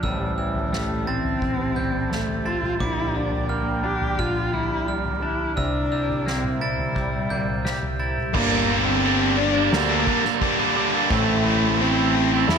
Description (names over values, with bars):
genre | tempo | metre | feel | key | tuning
post-rock | 87 BPM | 4/4 | straight | G dorian | A4 = 440 Hz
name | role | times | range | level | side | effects
dark cello | melody | 0.0-12.6 s | G3 to G4 | -26 LUFS | equal | slapback echo
chorused pulse-width pad | sustained chords | 0.0-12.6 s | G4 to Bb5 | -34 LUFS | right 1 dB | none
glockenspiel with hard plastic mallets | arpeggios | 0.0-8.3 s | D6 to A6 | -32 LUFS | right 6 dB | slapback echo
twangy electric guitar | arpeggios | 0.0-8.3 s | A2 to G4 | -32 LUFS | left 3 dB | spring reverb, slapback echo
growling picked electric bass | bass | 0.0-12.6 s | G1 to E2 | -28 LUFS | equal | overdrive
soft-mallet drum kit | drums | 0.0-12.6 s | crash cymbal, kick drum, snare drum, toms | -28 LUFS | left 1 dB | none
cranked stack guitar | riff | 8.3-12.6 s | G2 to E4 | -22 LUFS | right 14 dB | overdrive
sludgy distorted guitar | riff | 8.3-12.5 s | G2 to E4 | -25 LUFS | left 14 dB | overdrive
room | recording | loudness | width
light reverb, small room ambience | none | -20 LUFS | side -6 dB against mid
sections
0.0-8.3 A section; 8.3-12.6 B section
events
none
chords
0.0 Am7; 2.8 Bb6; 5.6 C7; 8.3 Gm7; 11.1 Am7